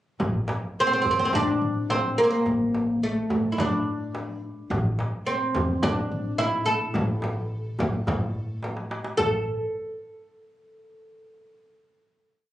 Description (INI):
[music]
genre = Arabic maqam ensemble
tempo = 107 BPM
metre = 4/4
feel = straight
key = A maqam kurd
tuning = A4 = 442 Hz
[part]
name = upright bass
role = bass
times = 0.2-9.5 s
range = A1 to A2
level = -31 LUFS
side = equal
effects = none
[part]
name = darbuka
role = percussion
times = 0.2-9.5 s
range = none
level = -33 LUFS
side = equal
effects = none
[part]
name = frame drum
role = percussion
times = 0.2-9.5 s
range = none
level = -31 LUFS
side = equal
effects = none
[part]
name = oud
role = melody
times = 0.8-9.4 s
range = A3 to A4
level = -24 LUFS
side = equal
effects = none
[sound]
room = moderate small room reverb, RT60 0.5 s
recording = recorded on a phone in the room, club reverb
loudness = -23 LUFS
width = side -13 dB against mid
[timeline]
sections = 0.2-9.2 A section; 9.2-11.4 final note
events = drum fill 8.6-9.2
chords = none